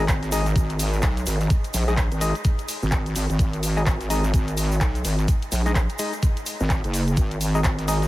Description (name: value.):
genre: bass house.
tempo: 127 BPM.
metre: 4/4.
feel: swing 60% on 16ths.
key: G# minor.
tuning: A4 = 441 Hz.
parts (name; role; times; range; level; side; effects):
percussive organ stab; stabs; 0.0-8.0 s; G#3 to D#5; -30 LUFS; left 2 dB; chorus, sidechain pumping, diffuse ambient delay.
wobble bass; bass; 0.0-8.1 s; F#1 to B1; -23 LUFS; equal; chorus, overdrive, sidechain pumping.
electronic kick drum; drums; 0.1-7.8 s; none; -22 LUFS; equal; small room ambience.
house drum kit; drums; 0.1-8.1 s; handclaps, hi-hat; -30 LUFS; left 1 dB; small room ambience.
tube shaker; percussion; 0.1-8.1 s; none; -35 LUFS; right 2 dB; none.
room: light reverb.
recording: none.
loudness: -20 LUFS.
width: side -17 dB against mid.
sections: 0.0-8.1 A section.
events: none.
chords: 0.0 G#5.